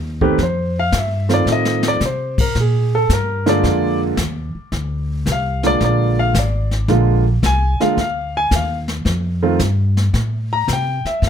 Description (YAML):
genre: jazz piano trio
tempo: 111 BPM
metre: 4/4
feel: swing 68% on 8ths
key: unclear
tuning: A4 = 440 Hz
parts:
  - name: upright bass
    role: bass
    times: 0.0-11.3 s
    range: Ab1 to C3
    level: -18 LUFS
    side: equal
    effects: none
  - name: warm grand piano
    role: melody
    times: 0.2-11.2 s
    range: D3 to Bb5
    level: -18 LUFS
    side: right 1 dB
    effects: none
  - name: jazz brush drum kit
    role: drums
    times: 0.2-11.3 s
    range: brushed snare drum, crash cymbal, hi-hat, kick drum, snare drum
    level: -23 LUFS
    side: left 2 dB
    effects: none
room: little or no reverb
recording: close, detailed microphones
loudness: -15 LUFS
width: side -8 dB against mid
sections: 0.0-11.3 A section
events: grand piano solo 0.0-11.3; drum fill 1.5-2.0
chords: 0.0 F7; 2.6 Bb7; 9.1 F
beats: | 0.39 0.93 1.47 2.02 | 2.56 3.10 3.64 4.18 | 4.73 5.27 5.81 6.35 | 6.89 7.44 7.98 8.52 | 9.06 9.60 10.14 10.68 | 11.22